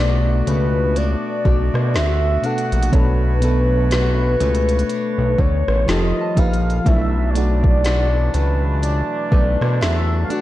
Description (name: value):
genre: contemporary R&B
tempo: 61 BPM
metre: 4/4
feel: swing 58% on 16ths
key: B minor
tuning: A4 = 441 Hz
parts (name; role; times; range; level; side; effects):
- warm velvety synth lead; melody; 0.0-10.4 s; B4 to F#5; -23 LUFS; equal; chorus, tape echo
- FM electric piano with auto-pan; accompaniment; 0.0-10.4 s; B2 to B4; -26 LUFS; right 1 dB; none
- warm woodwind section; sustained chords; 0.0-10.4 s; Eb3 to C#5; -29 LUFS; right 1 dB; none
- picked plugged-in swing-style acoustic guitar; arpeggios; 0.0-10.4 s; B2 to F#4; -27 LUFS; left 6 dB; none
- fat analog bass; bass; 0.0-10.2 s; F1 to B2; -18 LUFS; equal; none
- smooth R&B drum kit; drums; 0.5-10.4 s; hi-hat, kick drum, rim click, snare drum; -21 LUFS; equal; vintage 12-bit sampler grit
- soft synth bell; texture; 1.5-10.4 s; F4 to A5; -34 LUFS; right 1 dB; none
room: little or no reverb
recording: dark, warm production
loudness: -15 LUFS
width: side -15 dB against mid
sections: 0.0-10.4 A section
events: none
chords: 0.0 Bm7; 5.9 F9; 6.9 E9sus4/B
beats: 0.96 1.94 | 2.92 3.91 4.89 5.88 | 6.86 7.84 8.83 9.81